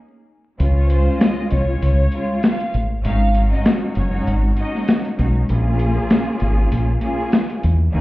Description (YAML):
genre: hip hop, boom-bap hip-hop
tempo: 98 BPM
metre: 4/4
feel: swing 56% on 16ths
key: Db major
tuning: A4 = 437 Hz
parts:
  - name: warm studio string section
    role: accompaniment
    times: 0.6-8.0 s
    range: Ab3 to Ab4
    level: -23 LUFS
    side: equal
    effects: cassette tape, high-pass filter, low-pass filter
  - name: deep dub fingered electric bass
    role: bass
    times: 0.6-8.0 s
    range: Gb1 to Fb2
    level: -16 LUFS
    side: equal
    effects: none
  - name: boom bap sampler-style drum kit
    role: drums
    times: 0.6-7.8 s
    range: hi-hat, snare drum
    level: -19 LUFS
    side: left 1 dB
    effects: none
  - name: warm studio violin section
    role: melody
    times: 0.8-4.9 s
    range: C5 to F5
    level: -27 LUFS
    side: equal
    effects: high-pass filter, low-pass filter, digital delay
room: digital ambience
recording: heard muffled through a wall, club reverb, vinyl crackle, EQ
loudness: -16 LUFS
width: side -18 dB against mid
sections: 0.6-8.0 A section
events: break 0.0-0.6; kick muted 0.6-8.0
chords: 0.0 N.C.; 0.6 Db; 3.0 Ab7sus4; 5.5 Bbm7